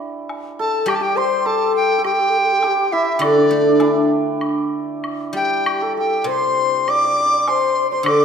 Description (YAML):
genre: chinese traditional, Chinese chamber ensemble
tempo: 100 BPM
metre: 4/4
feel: uneven beats, rubato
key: G zhi mode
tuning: A4 = 440 Hz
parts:
  - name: hammered dulcimer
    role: second line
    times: 0.0-8.2 s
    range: D4 to D5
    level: -22 LUFS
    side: right 5 dB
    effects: none
  - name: woodblock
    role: percussion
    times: 0.3-8.2 s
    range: none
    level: -27 LUFS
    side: left 1 dB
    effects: none
  - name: bright reedy large dizi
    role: melody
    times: 0.6-8.2 s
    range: D5 to D6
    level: -19 LUFS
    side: equal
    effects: none
  - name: breathy mellow low xiao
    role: second line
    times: 0.6-8.2 s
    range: D4 to D5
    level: -23 LUFS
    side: left 8 dB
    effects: none
  - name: guzheng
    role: accompaniment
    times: 0.9-8.2 s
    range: C3 to D4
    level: -20 LUFS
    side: left 1 dB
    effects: none
room: wet recital hall reverb, RT60 1.2 s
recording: none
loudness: -15 LUFS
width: side -7 dB against mid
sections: 0.0-8.2 A section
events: none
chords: none